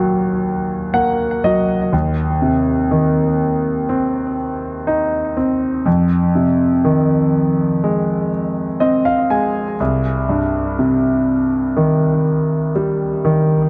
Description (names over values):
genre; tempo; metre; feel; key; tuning
pop; 61 BPM; 4/4; straight; unclear; A4 = 439 Hz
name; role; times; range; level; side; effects
clear concert grand piano; solo; 0.0-13.7 s; C2 to Ab5; -17 LUFS; equal; delay
room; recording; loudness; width
light reverb; dark, warm production, nothing above 10.9 kHz; -17 LUFS; mono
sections
0.0-13.7 A section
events
grand piano fill 0.5-1.9, 8.3-9.8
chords
0.0 Ebm; 1.9 Cm/Eb; 5.9 Fm7; 9.8 Cm